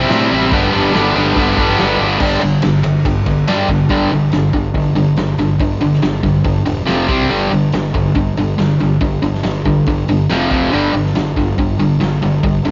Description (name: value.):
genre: garage rock duo or trio.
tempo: 140 BPM.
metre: 4/4.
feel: straight.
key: G mixolydian.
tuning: A4 = 439 Hz.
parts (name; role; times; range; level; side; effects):
cranked stack guitar; riff; 0.0-12.7 s; F2 to E4; -16 LUFS; equal; overdrive, cassette tape.
fuzz fingered electric bass; bass; 0.0-12.7 s; E1 to A2; -24 LUFS; equal; overdrive.
raw garage drum kit; drums; 0.0-12.7 s; crash cymbal, hi-hat, kick drum, ride cymbal, snare drum; -24 LUFS; equal; none.
room: light reverb, studio reverb.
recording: home recording on cassette, nothing above 7.5 kHz.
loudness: -15 LUFS.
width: mono.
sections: 0.0-2.2 A section; 2.2-3.9 B section; 3.9-12.7 C section.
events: none.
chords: 0.0 C; 0.5 G; 2.2 G5; 6.9 F5; 7.1 C5; 7.3 G5; 10.3 F5; 10.7 G5.